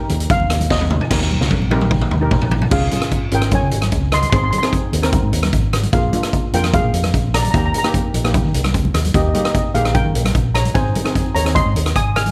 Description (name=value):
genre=calypso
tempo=149 BPM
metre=4/4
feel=straight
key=unclear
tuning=A4 = 440 Hz
part: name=steel pan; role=accompaniment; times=0.0-11.9 s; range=Bb3 to Bb4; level=-27 LUFS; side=equal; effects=none
part: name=fingered electric bass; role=bass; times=0.1-12.3 s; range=Ab1 to Eb3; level=-22 LUFS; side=equal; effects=none
part: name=street-band drum kit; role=drums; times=0.1-12.3 s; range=crash cymbal, hi-hat, kick drum, rim click, snare drum, toms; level=-21 LUFS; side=equal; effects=none
part: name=congas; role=percussion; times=0.1-12.3 s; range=none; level=-29 LUFS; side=equal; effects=none
part: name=steel pan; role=melody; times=0.3-12.3 s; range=G4 to F6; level=-24 LUFS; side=equal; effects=none
room=light reverb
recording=faint mains hum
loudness=-17 LUFS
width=mono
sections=0.0-1.1 A section; 1.1-2.7 B section; 2.7-12.3 C section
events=steel pan solo 0.0-1.1; drum fill 0.7-1.1, 1.1-2.7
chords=0.0 Eb; 2.7 Db; 4.3 Ab; 5.9 Bb7; 7.5 Eb; 10.8 Ab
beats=0.30 0.70 | 1.11 1.51 1.91 2.31 | 2.72 3.12 3.52 3.92 | 4.32 4.72 5.13 5.53 | 5.93 6.33 6.74 7.14 | 7.54 7.94 8.34 8.74 | 9.15 9.55 9.95 10.35 | 10.75 11.15 11.56 11.96